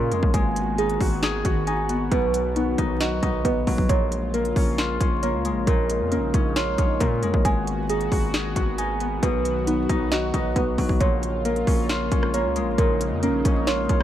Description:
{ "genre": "hip hop, trap", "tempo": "135 BPM", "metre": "4/4", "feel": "half-time", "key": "Bb phrygian", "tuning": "A4 = 441 Hz", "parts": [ { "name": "Celtic harp", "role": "accompaniment", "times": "0.0-14.0 s", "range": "Bb2 to Ab4", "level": "-27 LUFS", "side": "left 6 dB", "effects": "none" }, { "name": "warm analog pad", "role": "sustained chords", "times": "0.0-14.0 s", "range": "Db3 to Gb4", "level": "-32 LUFS", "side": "right 1 dB", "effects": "chorus" }, { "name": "muted felt-like synth keys", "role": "arpeggios", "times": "0.0-14.0 s", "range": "Db4 to Ab5", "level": "-26 LUFS", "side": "right 4 dB", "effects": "chorus, digital delay" }, { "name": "distorted 808-style bass", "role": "bass", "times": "0.0-14.0 s", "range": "Ab1 to Bb2", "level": "-28 LUFS", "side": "equal", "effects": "distortion" }, { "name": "trap drum kit", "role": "drums", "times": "0.1-14.0 s", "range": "hi-hat, kick drum, rim click, snare drum", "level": "-24 LUFS", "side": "equal", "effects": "none" } ], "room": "little or no reverb", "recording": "vinyl crackle", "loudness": "-20 LUFS", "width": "side -11 dB against mid", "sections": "0.0-11.0 A section; 11.0-14.0 B section", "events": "none", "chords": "0.3 Abm7; 2.1 B; 3.9 Bbm7; 7.5 Abm7; 9.2 B; 11.0 Bbm7" }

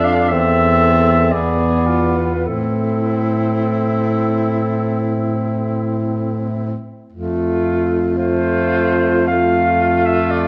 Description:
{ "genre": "classical, lyrical piece for single-reed quartet", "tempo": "49-60 BPM", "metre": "4/4", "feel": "rubato", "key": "A minor", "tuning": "A4 = 440 Hz", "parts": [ { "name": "mellow clarinet", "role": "melody", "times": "0.0-10.5 s", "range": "A4 to F5", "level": "-22 LUFS", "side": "equal", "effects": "none" }, { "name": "clear alto saxophone", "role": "second line", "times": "0.0-10.5 s", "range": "E4 to A4", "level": "-24 LUFS", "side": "equal", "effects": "none" }, { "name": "warm tenor saxophone", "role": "accompaniment", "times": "0.0-10.5 s", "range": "A3 to D4", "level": "-24 LUFS", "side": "equal", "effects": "none" }, { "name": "dark baritone saxophone", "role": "bass", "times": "0.0-10.5 s", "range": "E2 to A2", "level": "-21 LUFS", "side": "equal", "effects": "none" } ], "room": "wet recital hall reverb, RT60 1.4 s", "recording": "none", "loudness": "-17 LUFS", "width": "mono", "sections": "0.0-7.1 A section; 7.1-10.5 B section", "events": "none", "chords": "0.3 Am/E; 1.3 E7; 2.5 Am; 7.1 F" }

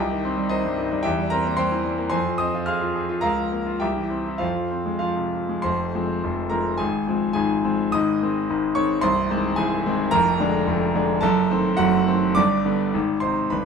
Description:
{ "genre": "classical, virtuoso piano study", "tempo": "91-113 BPM", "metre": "2/4", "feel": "rubato", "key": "F minor", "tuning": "A4 = 440 Hz", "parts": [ { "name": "bright concert grand piano", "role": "solo", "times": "0.0-13.7 s", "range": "C1 to F6", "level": "-20 LUFS", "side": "equal", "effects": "none" } ], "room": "moderate stone room reverb, RT60 1.3 s", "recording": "minimal, uncompressed stereo recording", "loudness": "-20 LUFS", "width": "side -6 dB against mid", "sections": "0.0-5.7 A section; 5.7-13.7 B section", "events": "none", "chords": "0.0 Cm; 1.1 C7/E; 2.1 Fm; 3.2 Bbm/Db; 3.8 C; 4.4 Fm; 6.8 Fm/Ab; 7.9 Ab; 9.1 Ab/C; 10.1 Ddim/F; 11.2 F#dim7; 12.4 G; 12.9 Ab" }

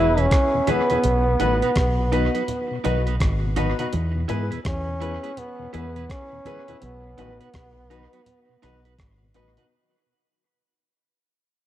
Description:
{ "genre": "roots reggae", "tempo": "83 BPM", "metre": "4/4", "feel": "swing 62% on 16ths", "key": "unclear", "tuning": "A4 = 438 Hz", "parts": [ { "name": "breathy trombone", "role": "melody", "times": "0.0-9.0 s", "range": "B3 to E4", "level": "-24 LUFS", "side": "right 1 dB", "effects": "tape echo" }, { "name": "clean electric guitar", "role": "accompaniment", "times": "0.0-9.7 s", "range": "D#4 to B4", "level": "-31 LUFS", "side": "right 9 dB", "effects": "cassette tape, tape echo" }, { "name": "mellow tonewheel organ", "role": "accompaniment", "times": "0.0-9.7 s", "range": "E2 to B3", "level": "-32 LUFS", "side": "left 6 dB", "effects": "slow rotary speaker, cassette tape, analog delay" }, { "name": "clear upright piano", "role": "stabs", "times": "0.0-9.7 s", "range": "B3 to B4", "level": "-30 LUFS", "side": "left 7 dB", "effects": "cassette tape" }, { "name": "deep dub fingered electric bass", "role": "bass", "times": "0.0-9.6 s", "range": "E1 to G#2", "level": "-24 LUFS", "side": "equal", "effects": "tube saturation" }, { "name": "breakbeat sampler-style drum kit", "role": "drums", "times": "0.2-9.7 s", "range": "hi-hat, kick drum, rim click", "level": "-25 LUFS", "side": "equal", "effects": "analog delay" }, { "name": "congas", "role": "percussion", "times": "0.7-9.7 s", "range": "none", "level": "-32 LUFS", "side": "right 6 dB", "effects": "none" } ], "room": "light reverb", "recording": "home recording on cassette", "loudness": "-20 LUFS", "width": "side -12 dB against mid", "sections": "0.0-9.7 A section", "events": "fade-out 0.0-9.7", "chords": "0.0 E; 1.0 B; 3.9 E; 6.8 B" }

